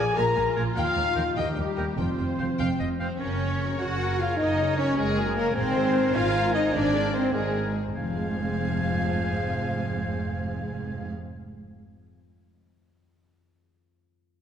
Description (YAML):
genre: cinematic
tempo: 101 BPM (dotted quarters)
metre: 6/8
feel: straight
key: F minor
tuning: A4 = 440 Hz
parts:
  - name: warm symphonic violin section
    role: melody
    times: 0.0-11.1 s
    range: Ab4 to Ab5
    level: -37 LUFS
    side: left 5 dB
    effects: none
  - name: bright clarinet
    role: second line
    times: 0.0-11.1 s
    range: Bb4 to F5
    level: -38 LUFS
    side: left 2 dB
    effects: none
  - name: clear oboe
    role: second line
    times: 0.0-11.1 s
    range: G5 to Ab5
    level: -36 LUFS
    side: right 2 dB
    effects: none
  - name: mellow hollow flute section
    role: second line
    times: 0.0-11.1 s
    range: G4 to Bb5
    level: -36 LUFS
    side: left 2 dB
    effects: none
  - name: warm symphonic violin section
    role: second line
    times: 0.0-11.1 s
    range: G4 to Bb5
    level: -36 LUFS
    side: left 4 dB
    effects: none
  - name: dark symphonic viola section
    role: accompaniment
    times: 0.0-11.1 s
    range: C4 to D5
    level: -37 LUFS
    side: right 1 dB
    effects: none
  - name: dark French horn section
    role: sustained chords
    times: 0.0-11.1 s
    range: F3 to Bb4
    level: -29 LUFS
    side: left 2 dB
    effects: none
  - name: concert harp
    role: arpeggios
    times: 0.0-12.0 s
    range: F2 to Bb5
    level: -36 LUFS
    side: left 7 dB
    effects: none
  - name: mellow trumpet section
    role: stabs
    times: 0.0-3.0 s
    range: G4 to Bb5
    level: -32 LUFS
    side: equal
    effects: none
  - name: dark studio double bass section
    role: bass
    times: 0.0-11.1 s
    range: F1 to Eb2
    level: -31 LUFS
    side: right 3 dB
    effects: none
  - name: warm symphonic cello section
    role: bass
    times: 0.0-11.1 s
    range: Eb2 to Gb4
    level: -31 LUFS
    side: right 3 dB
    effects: none
room: wet concert hall reverb, RT60 2.3 s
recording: dark, warm production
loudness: -23 LUFS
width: side -8 dB against mid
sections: 0.0-3.2 A section; 3.2-7.9 B section; 7.9-10.3 C section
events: none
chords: 0.0 Bb7; 0.8 Eb; 2.0 Fsus2; 3.2 Gbadd9; 5.6 Abadd9; 7.9 Fm